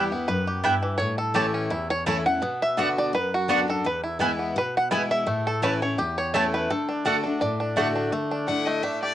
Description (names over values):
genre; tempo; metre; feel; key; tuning
bluegrass; 168 BPM; 4/4; swing 54% on 8ths; D major; A4 = 440 Hz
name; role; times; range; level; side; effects
bluegrass banjo; melody; 0.0-9.1 s; E3 to F#5; -26 LUFS; right 1 dB; cassette tape, plate reverb
picked steel-string acoustic guitar; accompaniment; 0.0-9.1 s; E2 to F#4; -28 LUFS; left 2 dB; plate reverb
mandolin; stabs; 0.0-7.9 s; A3 to A5; -24 LUFS; right 2 dB; plate reverb
clear fiddle; second line; 8.5-9.1 s; D5 to F#5; -27 LUFS; left 5 dB; plate reverb
room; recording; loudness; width
moderate booth ambience, RT60 0.2 s; home recording on cassette; -22 LUFS; side -12 dB against mid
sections
0.0-8.1 A section; 8.1-9.1 A section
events
five-string banjo solo 0.0-8.1; fiddle solo 8.1-9.1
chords
0.0 Em; 1.0 A; 2.4 Bm; 3.8 E; 5.3 A; 6.7 D; 8.1 Dsus2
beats
0.29 0.64 | 1.00 1.36 1.71 2.07 | 2.42 2.78 3.14 3.49 | 3.85 4.21 4.56 4.92 | 5.27 5.63 5.99 6.34 | 6.70 7.05 7.41 7.76 | 8.12 8.48 8.83